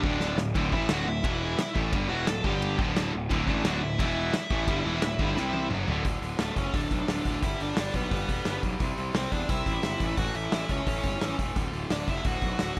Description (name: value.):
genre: punk rock.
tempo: 174 BPM.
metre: 4/4.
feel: straight.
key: D major.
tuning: A4 = 440 Hz.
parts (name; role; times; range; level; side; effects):
dark smooth lead guitar; melody; 0.0-12.8 s; A3 to A5; -35 LUFS; equal; overdrive.
distorted electric guitar; riff; 0.0-6.0 s; D2 to C4; -36 LUFS; equal; distortion.
sludgy distorted guitar; riff; 0.0-6.1 s; D2 to C4; -38 LUFS; equal; none.
tight distorted guitar; riff; 0.0-12.8 s; D2 to C4; -37 LUFS; equal; distortion.
fuzz picked electric bass; bass; 0.0-12.8 s; D1 to E2; -35 LUFS; equal; overdrive.
loose indie drum kit; drums; 0.0-12.8 s; crash cymbal, hi-hat, kick drum, snare drum, toms; -33 LUFS; equal; none.
room: little or no reverb.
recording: none.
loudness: -28 LUFS.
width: mono.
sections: 0.0-6.0 A section; 6.0-12.8 B section.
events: drum fill 0.2-0.6, 5.4-6.0.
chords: 0.0 D; 1.2 E5; 1.6 D; 2.4 G5; 2.8 D; 4.0 E5; 4.3 D5; 5.4 C5; 5.7 D; 6.0 D5; 7.4 G; 8.8 C; 10.0 A; 11.6 D.